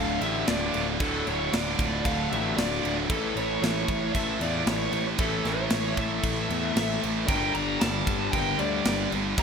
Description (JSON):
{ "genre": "heavy metal", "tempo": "115 BPM", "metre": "4/4", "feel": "straight", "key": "unclear", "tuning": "A4 = 440 Hz", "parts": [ { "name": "bluesy overdriven lead guitar", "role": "melody", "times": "0.0-9.4 s", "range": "A4 to Bb5", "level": "-31 LUFS", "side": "left 1 dB", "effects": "distortion" }, { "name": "high-gain lead guitar", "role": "second line", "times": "0.0-9.4 s", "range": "C#4 to D5", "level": "-38 LUFS", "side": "right 3 dB", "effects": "none" }, { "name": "distorted electric guitar", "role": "riff", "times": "0.0-9.4 s", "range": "D2 to A3", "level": "-34 LUFS", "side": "right 1 dB", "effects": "distortion" }, { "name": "heavy high-gain guitar", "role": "riff", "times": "0.0-9.4 s", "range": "D2 to A3", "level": "-33 LUFS", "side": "left 10 dB", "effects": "distortion" }, { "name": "heavy high-gain guitar", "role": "riff", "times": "0.0-9.4 s", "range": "D2 to A3", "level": "-32 LUFS", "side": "right 12 dB", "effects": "distortion" }, { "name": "fuzz picked electric bass", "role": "bass", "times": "0.0-9.4 s", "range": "D1 to E2", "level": "-32 LUFS", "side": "equal", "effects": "overdrive" }, { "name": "tight metal drum kit", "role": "drums", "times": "0.2-9.4 s", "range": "crash cymbal, kick drum, snare drum", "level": "-30 LUFS", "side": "equal", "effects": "none" } ], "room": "moderate lush hall reverb, RT60 1.6 s, studio ambience", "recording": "bright 1980s-style digital production", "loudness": "-24 LUFS", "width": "side -6 dB against mid", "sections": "0.0-9.4 A section", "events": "none", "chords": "0.0 Dm; 3.1 A; 7.3 Gm", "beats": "0.48 | 1.00 1.52 2.05 2.57 | 3.09 3.62 4.14 4.66 | 5.19 5.71 6.23 6.76 | 7.28 7.80 8.32 8.85 | 9.37" }